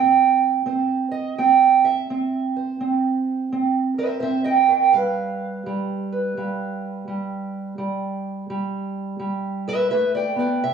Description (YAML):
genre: acoustic country blues, solo or duo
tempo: 84 BPM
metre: 4/4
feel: swing 63% on 8ths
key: unclear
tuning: A4 = 440 Hz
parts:
  - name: fingerpicked steel-string acoustic guitar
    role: solo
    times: 0.0-10.7 s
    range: C3 to G5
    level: -19 LUFS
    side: right 5 dB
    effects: cassette tape
room: light reverb, small room ambience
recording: home recording on cassette, studio reverb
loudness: -19 LUFS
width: side -6 dB against mid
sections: 0.0-10.7 A section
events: steel-string acoustic guitar solo 0.0-10.7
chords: 0.0 C7; 4.9 G7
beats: 0.67 1.39 | 2.10 2.81 3.52 4.23 | 4.94 5.66 6.37 7.08 | 7.79 8.50 9.21 9.92 | 10.63